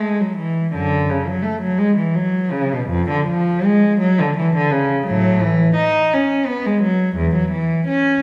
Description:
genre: classical, baroque-style suite movement for unaccompanied cello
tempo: 56 BPM (dotted quarters)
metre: 6/8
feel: rubato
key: E major from 5.1 s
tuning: A4 = 439 Hz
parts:
  - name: rich cello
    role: solo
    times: 0.0-8.2 s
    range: E2 to D#4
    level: -18 LUFS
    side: equal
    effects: none
room: wet recital hall reverb, RT60 1.4 s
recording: heard from further back in the room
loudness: -18 LUFS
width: mono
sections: 0.0-8.2 A section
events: none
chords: none

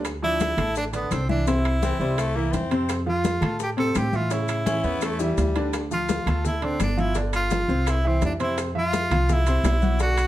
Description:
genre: latin, salsa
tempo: 169 BPM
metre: 4/4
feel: straight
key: unclear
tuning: A4 = 440 Hz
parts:
  - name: clear grand piano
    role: accompaniment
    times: 0.0-10.3 s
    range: C3 to C#6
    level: -27 LUFS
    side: right 1 dB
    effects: none
  - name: upright bass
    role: bass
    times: 0.0-10.3 s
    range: G1 to A2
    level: -25 LUFS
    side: equal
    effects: none
  - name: congas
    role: percussion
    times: 0.0-10.3 s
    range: none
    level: -30 LUFS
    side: left 2 dB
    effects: none
  - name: maracas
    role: percussion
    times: 0.0-10.3 s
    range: none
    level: -41 LUFS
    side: left 6 dB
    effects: none
  - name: timbales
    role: percussion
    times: 0.0-10.3 s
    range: none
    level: -35 LUFS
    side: right 6 dB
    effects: none
  - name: bongos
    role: percussion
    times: 0.1-10.3 s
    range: none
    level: -35 LUFS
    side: left 5 dB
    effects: none
  - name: claves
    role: percussion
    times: 0.1-10.3 s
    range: none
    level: -40 LUFS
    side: left 6 dB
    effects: none
  - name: breathy tenor saxophone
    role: melody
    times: 0.2-10.3 s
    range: B3 to A4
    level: -27 LUFS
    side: equal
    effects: none
  - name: raspy baritone saxophone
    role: second line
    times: 1.8-5.8 s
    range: G3 to C#4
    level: -29 LUFS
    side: left 5 dB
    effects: none
room: light reverb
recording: none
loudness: -21 LUFS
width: side -14 dB against mid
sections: 0.1-10.3 A section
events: drum fill 5.0-5.7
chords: 0.1 Dm7; 1.5 C; 2.9 F; 4.3 A7; 5.7 Dm; 7.2 G5; 7.9 C; 8.6 F5

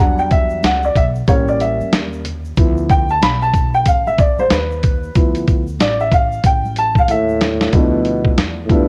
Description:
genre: hip hop, jazz-hop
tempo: 93 BPM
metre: 4/4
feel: swing 61% on 16ths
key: D dorian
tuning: A4 = 440 Hz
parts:
  - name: dark upright piano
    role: accompaniment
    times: 0.0-8.9 s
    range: F3 to B5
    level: -19 LUFS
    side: equal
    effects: cassette tape
  - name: upright bass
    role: bass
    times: 0.0-8.9 s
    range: A1 to E2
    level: -26 LUFS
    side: equal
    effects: none
  - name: egg shaker and congas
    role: percussion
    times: 0.2-7.7 s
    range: none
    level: -37 LUFS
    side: equal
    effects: none
  - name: dusty soul sampler-style drum kit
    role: drums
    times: 0.3-8.9 s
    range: hi-hat, kick drum, snare drum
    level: -18 LUFS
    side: equal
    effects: vintage 12-bit sampler grit, cassette tape
  - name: breathy trombone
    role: melody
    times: 7.1-8.9 s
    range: G2 to B2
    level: -20 LUFS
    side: equal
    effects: cassette tape
room: light reverb, studio reverb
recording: home recording on cassette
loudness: -15 LUFS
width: mono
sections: 0.0-7.7 A section; 7.7-8.9 B section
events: upright piano solo 0.0-7.7; drum fill 7.1-7.7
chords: 0.0 Em7; 1.3 A7b9; 2.6 Dm69

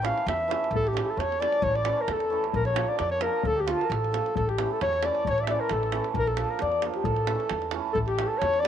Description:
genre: balkan folk, Balkan wedding band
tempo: 132 BPM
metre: 2/4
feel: straight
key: A phrygian dominant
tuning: A4 = 440 Hz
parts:
  - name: dark clarinet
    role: melody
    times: 0.0-8.7 s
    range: F4 to F5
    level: -27 LUFS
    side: left 1 dB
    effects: none
  - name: hammered dulcimer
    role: accompaniment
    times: 0.0-8.7 s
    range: E3 to A4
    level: -32 LUFS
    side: right 9 dB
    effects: none
  - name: upright bass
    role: bass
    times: 0.0-8.7 s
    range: A1 to F2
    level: -32 LUFS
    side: equal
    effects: none
  - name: davul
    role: percussion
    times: 0.0-8.7 s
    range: none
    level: -34 LUFS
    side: right 2 dB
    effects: none
  - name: mellow trumpet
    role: second line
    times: 0.7-8.7 s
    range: F4 to E5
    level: -33 LUFS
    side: left 11 dB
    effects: none
room: light reverb, small room reverb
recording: 1960s-style stereo with parts hard left and right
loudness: -24 LUFS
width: side -9 dB against mid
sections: 0.7-8.0 A section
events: none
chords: 0.0 A; 2.5 Bb; 3.4 Dm; 4.4 A; 6.2 Bb; 7.1 A

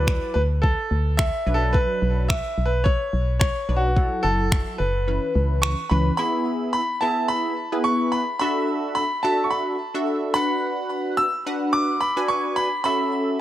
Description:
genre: dance-pop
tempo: 108 BPM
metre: 4/4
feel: straight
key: unclear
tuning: A4 = 440 Hz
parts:
  - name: clear grand piano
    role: melody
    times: 0.0-13.4 s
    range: F#4 to E6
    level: -24 LUFS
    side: equal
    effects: digital delay
  - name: funky polysynth comp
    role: accompaniment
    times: 0.0-13.4 s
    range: E3 to G#5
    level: -25 LUFS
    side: equal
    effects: chorus, sidechain pumping
  - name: organ-like FM bass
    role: bass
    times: 0.0-6.1 s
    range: F#1 to D2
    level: -22 LUFS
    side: equal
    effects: sidechain pumping
  - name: smooth R&B drum kit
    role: drums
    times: 0.1-5.8 s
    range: finger snaps, kick drum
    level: -22 LUFS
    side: equal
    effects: none
room: little or no reverb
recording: none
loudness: -20 LUFS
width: side -13 dB against mid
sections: 0.0-6.2 A section; 6.2-13.4 B section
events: kick muted 5.1-6.2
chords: 0.0 Dadd9; 1.5 Bm; 4.0 F#m7; 5.1 C#m7; 6.2 E; 8.4 Dadd9; 10.4 Bm; 12.9 F#m7

